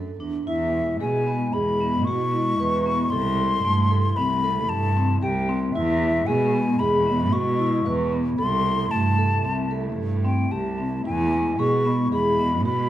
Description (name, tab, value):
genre	contemporary instrumental, chamber music in an uneven meter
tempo	114 BPM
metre	5/4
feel	straight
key	unclear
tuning	A4 = 440 Hz
part	vibraphone with soft mallets	arpeggios	0.0-12.9 s	A3 to B4	-25 LUFS	equal	none
part	dark cello	bass	0.0-12.9 s	C2 to B2	-25 LUFS	right 2 dB	none
part	mellow hollow silver concert flute	melody	0.5-12.9 s	E5 to C#6	-25 LUFS	left 2 dB	none
part	warbly tape-like pad	sustained chords	0.5-12.9 s	B2 to E4	-30 LUFS	left 1 dB	chorus, built-in reverb
room	moderate recital hall reverb, RT60 1.3 s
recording	none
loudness	-20 LUFS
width	side -12 dB against mid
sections	0.5-12.9 A section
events	none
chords	0.5 E; 3.1 C6; 5.8 E; 8.4 C6; 11.1 E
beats	| 0.47 1.00 1.54 2.07 2.59 | 3.12 3.65 4.17 4.70 5.23 | 5.75 6.28 6.80 7.33 7.86 | 8.39 8.91 9.45 9.98 10.52 | 11.05 11.59 12.12 12.65